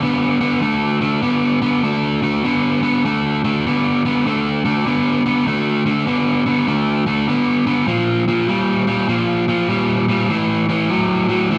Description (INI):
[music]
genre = blues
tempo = 99 BPM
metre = 4/4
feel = swing 64% on 8ths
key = unclear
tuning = A4 = 438 Hz
[part]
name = biting overdriven guitar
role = solo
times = 0.0-11.6 s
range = A2 to B3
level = -18 LUFS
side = equal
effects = spring reverb
[sound]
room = moderate stone room reverb, RT60 1.1 s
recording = band playing live in one room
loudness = -18 LUFS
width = mono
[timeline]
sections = 0.0-11.6 A section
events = none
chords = 0.0 D5; 7.9 Bb5; 10.3 A5